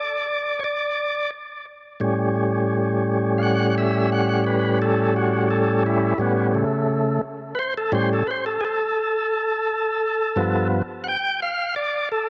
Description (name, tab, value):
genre	blues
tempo	58 BPM (dotted quarters)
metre	12/8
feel	straight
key	unclear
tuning	A4 = 440 Hz
part	tonewheel organ	solo	0.0-12.3 s	G2 to G5	-22 LUFS	equal	slow rotary speaker, overdrive, analog delay
room	light reverb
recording	home recording on cassette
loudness	-22 LUFS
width	mono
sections	0.0-12.3 A section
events	tonewheel organ solo 0.0-12.3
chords	0.0 N.C.; 2.0 A7; 10.4 G7